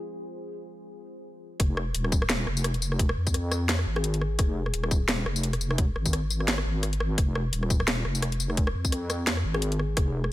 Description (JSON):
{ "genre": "half-time drum and bass", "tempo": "172 BPM", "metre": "4/4", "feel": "swing 56% on 16ths, half-time", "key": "F minor", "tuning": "A4 = 438 Hz", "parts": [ { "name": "deep dark ambient pad", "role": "sustained chords", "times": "0.0-0.9 s", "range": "F4 to C5", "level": "-43 LUFS", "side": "equal", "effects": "chorus, built-in reverb, sidechain pumping" }, { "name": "deep soft wobble bass", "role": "bass", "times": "1.6-10.3 s", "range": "Eb1 to F2", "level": "-28 LUFS", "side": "equal", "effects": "chorus" }, { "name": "drum and bass drum kit", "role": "drums", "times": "1.6-10.3 s", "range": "hi-hat, rim click, snare drum, tambourine", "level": "-29 LUFS", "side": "equal", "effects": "overdrive" }, { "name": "electronic kick drum", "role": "drums", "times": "1.6-10.0 s", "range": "none", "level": "-25 LUFS", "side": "equal", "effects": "overdrive" }, { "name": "kalimba", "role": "melody", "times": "4.0-4.4, 9.5-10.0 s", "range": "Ab4", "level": "-39 LUFS", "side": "left 5 dB", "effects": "tape echo" } ], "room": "digital ambience", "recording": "none", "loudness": "-24 LUFS", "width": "side -15 dB against mid", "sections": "0.0-1.6 A section; 1.6-10.3 B section", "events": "drop 1.6-10.3", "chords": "0.0 Fm", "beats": "| 0.20 0.55 0.90 1.25 | 1.60 1.95 2.29 2.64 | 2.99 3.34 3.69 4.04 | 4.39 4.74 5.09 5.43 | 5.78 6.13 6.48 6.83 | 7.18 7.53 7.88 8.22 | 8.57 8.92 9.27 9.62 | 9.97" }